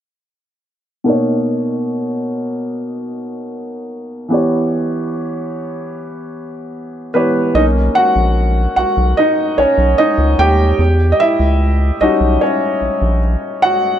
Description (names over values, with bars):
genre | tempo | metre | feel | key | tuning
contemporary R&B | 74 BPM | 4/4 | straight | B major | A4 = 440 Hz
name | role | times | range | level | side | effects
felt-muted upright piano | accompaniment | 1.0-14.0 s | B2 to G5 | -15 LUFS | equal | none
round analog bass | bass | 7.5-13.4 s | A#1 to E2 | -14 LUFS | equal | none
room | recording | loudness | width
light reverb, small room ambience | low-pass filter | -13 LUFS | side -10 dB against mid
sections
1.1-7.5 A section; 7.5-14.0 B section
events
filter sweep 1.1-7.5; felt piano solo 7.5-14.0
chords
1.1 Bmaj9; 4.3 Em6; 7.5 Bmaj9; 10.8 Em6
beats
| 1.06 1.87 2.68 3.49 | 4.30 5.11 5.92 6.74 | 7.55 8.36 9.17 9.98 | 10.79 11.60 12.41 13.22